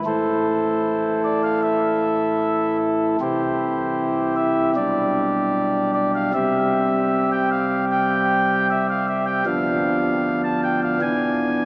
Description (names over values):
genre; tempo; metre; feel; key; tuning
classical, chorale-style piece for pipe organ; 77 BPM; 4/4; rubato; unclear; A4 = 440 Hz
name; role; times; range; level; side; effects
chamber organ, principal; solo; 0.0-11.7 s; D1 to A5; -18 LUFS; equal; none
room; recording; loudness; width
wet cathedral reverb, RT60 5.4 s; small speaker sound; -18 LUFS; side -25 dB against mid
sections
0.0-11.7 A section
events
none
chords
0.1 Am; 3.2 C; 4.8 G/B; 6.3 C; 9.5 Bdim/D; 11.0 E7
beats
| 0.06 0.85 1.64 2.42 | 3.21 3.99 4.77 5.55 | 6.34 7.13 7.92 8.70 | 9.47 10.26 11.03